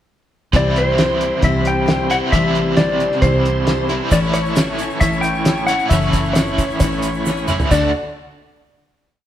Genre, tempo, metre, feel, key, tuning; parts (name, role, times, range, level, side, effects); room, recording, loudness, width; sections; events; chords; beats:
folk rock and heartland rock; 134 BPM; 4/4; straight; A4 = 440 Hz
picked steel-string acoustic guitar; accompaniment; 0.5-7.9 s; A2 to C#5; -22 LUFS; left 4 dB
bright tonewheel organ; sustained chords; 0.5-7.9 s; D4 to C#6; -28 LUFS; equal; slow rotary speaker, chorus vibrato
overdriven electric guitar; riff; 0.5-7.9 s; A2 to F#4; -22 LUFS; right 2 dB; tremolo
fingered electric bass; bass; 0.5-7.9 s; F#1 to D2; -22 LUFS; right 1 dB
cloth-damped thuddy drum kit; drums; 0.5-7.8 s; crash cymbal, hi-hat, kick drum, snare drum, toms; -19 LUFS; equal
clean lap steel guitar; melody; 0.6-7.9 s; C5 to G5; -21 LUFS; left 1 dB
tube shaker; percussion; 4.1-7.9 s; -36 LUFS; right 6 dB
wet stone room reverb, RT60 1.3 s; band playing live in one room; -14 LUFS; side -11 dB against mid
0.5-7.7 pre-chorus; 7.7-9.3 final chord
drum fill 7.3-7.7
0.5 C; 4.1 A; 7.7 D
| 0.54 0.98 1.43 1.88 | 2.32 2.77 3.22 3.67 | 4.12 4.57 5.01 5.46 | 5.91 6.37 6.82 7.27 | 7.72